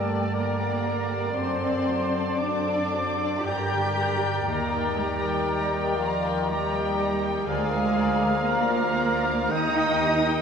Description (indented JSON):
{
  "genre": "classical",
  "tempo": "59 BPM",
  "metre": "3/4",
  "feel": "rubato",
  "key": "G minor",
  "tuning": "A4 = 444 Hz",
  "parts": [
    { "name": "muted studio violin section", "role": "melody", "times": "0.0-10.4 s", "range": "Bb4 to Bb5", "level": "-34 LUFS", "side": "left 2 dB", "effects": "none" },
    { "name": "clear oboe", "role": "second line", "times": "0.0-10.4 s", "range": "D5 to G5", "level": "-33 LUFS", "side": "right 2 dB", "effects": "none" },
    { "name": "dark clarinet", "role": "second line", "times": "0.0-10.4 s", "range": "Bb4 to D5", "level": "-37 LUFS", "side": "left 2 dB", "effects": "none" },
    { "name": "large flute ensemble", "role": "second line", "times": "0.0-10.4 s", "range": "G5 to Bb5", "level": "-34 LUFS", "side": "left 2 dB", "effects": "none" },
    { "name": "muted studio violin section", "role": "second line", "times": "0.0-10.4 s", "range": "F5 to G6", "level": "-35 LUFS", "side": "left 3 dB", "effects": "none" },
    { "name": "clear bassoon", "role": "accompaniment", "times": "0.0-10.4 s", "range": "D3 to F3", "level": "-34 LUFS", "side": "equal", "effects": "none" },
    { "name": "muted studio viola section", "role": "accompaniment", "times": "0.0-10.4 s", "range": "F#4 to G5", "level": "-36 LUFS", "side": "right 1 dB", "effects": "none" },
    { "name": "mellow French horn section", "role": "sustained chords", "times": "0.0-10.4 s", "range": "G4 to F5", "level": "-34 LUFS", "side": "left 4 dB", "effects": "none" },
    { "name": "concert harp", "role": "arpeggios", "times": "0.0-10.4 s", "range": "F#2 to D6", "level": "-36 LUFS", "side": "left 3 dB", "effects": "none" },
    { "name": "warm trumpet", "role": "stabs", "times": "0.0-10.3 s", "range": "F4 to G5", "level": "-32 LUFS", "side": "equal", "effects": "none" },
    { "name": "muted studio cello section", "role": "bass", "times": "0.0-10.4 s", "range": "F3 to G4", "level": "-28 LUFS", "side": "right 2 dB", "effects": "none" },
    { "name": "muted studio double bass section", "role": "bass", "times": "0.0-10.4 s", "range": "D2 to G2", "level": "-33 LUFS", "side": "right 3 dB", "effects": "none" }
  ],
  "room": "wet church reverb, RT60 3.8 s",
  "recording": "recorded in a church or concert hall",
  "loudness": "-22 LUFS",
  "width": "side -6 dB against mid",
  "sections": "0.0-10.4 A section",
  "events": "none",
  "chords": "0.0 Gm; 1.4 D7/F#; 3.5 Gm; 4.5 Ebmaj7; 7.5 Bb7/D; 9.5 Eb",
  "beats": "0.35 | 1.36 2.39 3.46 | 4.47 5.49 6.49 | 7.48 8.46 9.52"
}